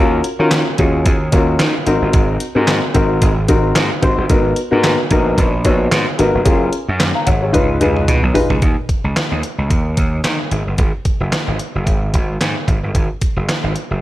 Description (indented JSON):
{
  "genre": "early-eighties boogie funk",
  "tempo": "111 BPM",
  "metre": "4/4",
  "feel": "swing 56% on 16ths",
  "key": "unclear",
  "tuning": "A4 = 436 Hz",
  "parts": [
    { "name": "warm grand piano", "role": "accompaniment", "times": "0.0-8.5 s", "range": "Cb4 to Bb5", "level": "-16 LUFS", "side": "left 2 dB", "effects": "none" },
    { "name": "gritty slap bass", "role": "bass", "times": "0.0-14.0 s", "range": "F1 to Eb3", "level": "-18 LUFS", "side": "equal", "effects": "overdrive" },
    { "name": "detuned 8-bit digital drum machine", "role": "drums", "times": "0.2-13.9 s", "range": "handclaps, hi-hat, kick drum, snare drum, toms", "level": "-17 LUFS", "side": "right 1 dB", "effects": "none" }
  ],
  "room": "little or no reverb",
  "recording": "none",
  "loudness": "-13 LUFS",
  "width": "side -15 dB against mid",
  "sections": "0.0-8.6 A section; 8.6-14.0 B section",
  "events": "drum fill 7.5-8.6",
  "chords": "0.0 Ebm9; 1.9 Ab7; 4.3 Abm9; 6.5 Gbmaj9; 7.5 Db9; 8.6 N.C.",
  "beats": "0.52 1.05 1.60 | 2.14 2.68 3.22 3.76 | 4.30 4.84 5.38 5.92 | 6.46 7.00 7.54 8.08 | 8.62 9.16 9.70 10.24 | 10.79 11.33 11.87 12.41 | 12.95 13.49"
}